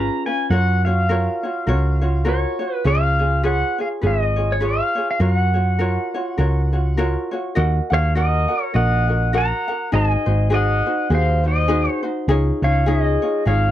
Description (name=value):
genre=Hawaiian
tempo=102 BPM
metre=4/4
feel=swing 58% on 8ths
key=F# major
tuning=A4 = 436 Hz
part: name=pedal steel guitar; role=melody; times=0.0-13.7 s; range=G#4 to A#5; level=-22 LUFS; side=left 1 dB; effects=none
part: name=ukulele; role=accompaniment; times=0.0-13.7 s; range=C#4 to F#5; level=-23 LUFS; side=equal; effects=none
part: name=hollow-body short-scale picked electric bass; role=bass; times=0.0-13.7 s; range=G#1 to F#2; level=-18 LUFS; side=equal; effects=none
room=little or no reverb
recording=dry, close 1970s-style studio recording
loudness=-17 LUFS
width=side -12 dB against mid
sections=0.0-7.6 A section; 7.6-13.7 B section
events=none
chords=0.0 C#7; 0.5 F#maj7; 2.9 C#7; 5.2 F#maj7; 7.6 D#m; 9.9 G#7; 12.3 C#add9